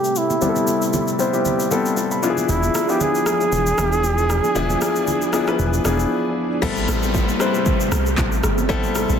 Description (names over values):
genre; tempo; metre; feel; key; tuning
amapiano; 116 BPM; 4/4; swing 55% on 16ths; A minor; A4 = 440 Hz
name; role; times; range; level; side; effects
trumpet with bucket mute; melody; 0.0-6.1 s; E4 to G#4; -22 LUFS; right 1 dB; low-pass filter, digital delay
warm baby grand piano; accompaniment; 0.0-9.2 s; F3 to B5; -22 LUFS; left 4 dB; low-pass filter
string machine, full ensemble; sustained chords; 0.0-9.2 s; C3 to A4; -26 LUFS; right 2 dB; ensemble chorus, low-pass filter
deep house drum kit; drums; 0.0-9.2 s; crash cymbal, handclaps, kick drum, rim click, shaker; -25 LUFS; equal; overdrive
bongos and congas; percussion; 0.3-9.1 s; none; -30 LUFS; right 5 dB; none
fat analog bass; bass; 2.5-6.1 s; E1; -22 LUFS; equal; none
deep log drum bass; bass; 6.6-9.2 s; G1 to C2; -23 LUFS; equal; none
downlifter; sound effects; 6.7-9.2 s; none; -29 LUFS; equal; none
room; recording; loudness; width
light reverb; dense, heavily limited modern master; -17 LUFS; side -8 dB against mid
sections
0.0-6.6 A section; 6.6-9.2 B section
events
filter sweep 0.0-6.6; grand piano fill 1.5-2.5; break 6.1-6.6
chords
0.0 Am9; 2.2 E7b9; 6.6 Am9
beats
| 0.42 0.94 1.45 1.97 | 2.49 3.00 3.52 4.04 | 4.56 5.07 5.59 6.11 | 6.63 7.14 7.66 8.18 | 8.70